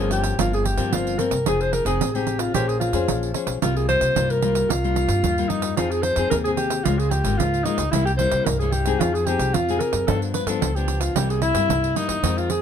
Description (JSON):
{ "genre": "samba and choro", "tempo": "111 BPM", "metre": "4/4", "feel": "straight", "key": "unclear", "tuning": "A4 = 439 Hz", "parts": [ { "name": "breathy alto saxophone", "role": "melody", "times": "0.0-12.6 s", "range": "Eb4 to C5", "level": "-23 LUFS", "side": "equal", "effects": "plate reverb" }, { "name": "nylon-string guitar", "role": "accompaniment", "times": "0.0-12.6 s", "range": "F2 to C5", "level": "-26 LUFS", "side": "left 9 dB", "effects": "none" }, { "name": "upright bass", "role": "bass", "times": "0.0-12.6 s", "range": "F1 to G2", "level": "-25 LUFS", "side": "equal", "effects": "none" }, { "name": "pandeiro", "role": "percussion", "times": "0.1-12.6 s", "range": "none", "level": "-27 LUFS", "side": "right 10 dB", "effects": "none" } ], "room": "light reverb", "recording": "close, detailed microphones", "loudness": "-19 LUFS", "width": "side -8 dB against mid", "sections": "0.0-12.6 A section", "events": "none", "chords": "0.4 C7sus4/G; 1.5 Fm7; 2.5 Bbm9; 3.6 C7sus4; 5.8 Fm7; 6.9 Db6; 7.9 C7; 9.0 Fm7; 10.1 G7; 11.2 C7" }